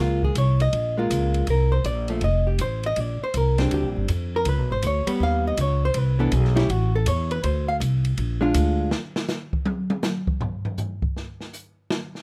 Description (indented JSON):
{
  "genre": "jazz, small-group swing and bop",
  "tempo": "161 BPM",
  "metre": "4/4",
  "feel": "swing 65% on 8ths",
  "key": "unclear",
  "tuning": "A4 = 439 Hz",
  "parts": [
    { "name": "vintage hollow-body jazz guitar", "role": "accompaniment", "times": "0.0-8.9 s", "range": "E3 to F5", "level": "-27 LUFS", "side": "equal", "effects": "none" },
    { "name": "upright bass", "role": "bass", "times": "0.0-8.9 s", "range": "F1 to F2", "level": "-24 LUFS", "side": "equal", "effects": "none" },
    { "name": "open jazz drum kit", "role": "drums", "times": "0.2-12.2 s", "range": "hi-hat, kick drum, ride cymbal, snare drum, toms", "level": "-32 LUFS", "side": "equal", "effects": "none" }
  ],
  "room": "small room ambience",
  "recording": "rough home demo mix",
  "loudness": "-23 LUFS",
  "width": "mono",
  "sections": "0.0-8.9 A section; 8.9-12.2 A section",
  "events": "drum solo 8.9-12.2",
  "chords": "0.0 Db6; 1.5 C7(no3); 2.2 F; 3.0 Bb69; 4.5 Db7#11; 6.0 Cmaj9; 6.7 A5; 7.4 Csus2; 8.2 Bb7; 8.9 N.C."
}